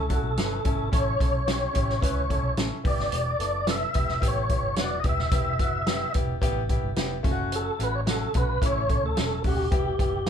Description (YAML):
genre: uptempo 1960s-style soul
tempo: 109 BPM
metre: 4/4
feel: straight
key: E dorian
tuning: A4 = 440 Hz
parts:
  - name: mellow tonewheel organ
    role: melody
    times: 0.0-10.3 s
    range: G4 to E5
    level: -28 LUFS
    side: equal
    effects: chorus vibrato, fast rotary speaker
  - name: vintage muted fingered electric bass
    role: bass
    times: 0.0-10.3 s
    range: D#1 to D2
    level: -30 LUFS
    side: equal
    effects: none
  - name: bright upright piano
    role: accompaniment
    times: 0.1-10.3 s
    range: A3 to B4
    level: -32 LUFS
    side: left 2 dB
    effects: none
  - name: vintage drum kit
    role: drums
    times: 0.1-10.3 s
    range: hi-hat, kick drum, snare drum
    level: -26 LUFS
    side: equal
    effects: none
room: moderate studio reverb, RT60 0.7 s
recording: band playing live in one room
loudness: -23 LUFS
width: side -8 dB against mid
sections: 0.0-10.3 A section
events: none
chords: 0.0 A; 2.8 Em; 7.2 F#m; 9.7 Em